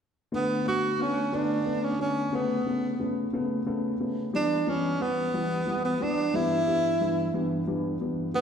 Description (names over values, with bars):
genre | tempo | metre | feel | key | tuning
pop | 60 BPM (dotted quarters) | 6/8 | straight | B minor | A4 = 445 Hz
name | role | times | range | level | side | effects
dark upright piano | accompaniment | 0.3-8.4 s | G2 to B3 | -28 LUFS | left 1 dB | none
warm tenor saxophone | melody | 0.4-8.4 s | B3 to F#4 | -27 LUFS | right 1 dB | none
room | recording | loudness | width
wet recital hall reverb, RT60 1.6 s | recorded in a church or concert hall | -25 LUFS | side -7 dB against mid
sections
0.3-8.4 A section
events
none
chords
0.3 Bm7; 2.3 Aadd9; 4.3 G6; 6.3 Em/G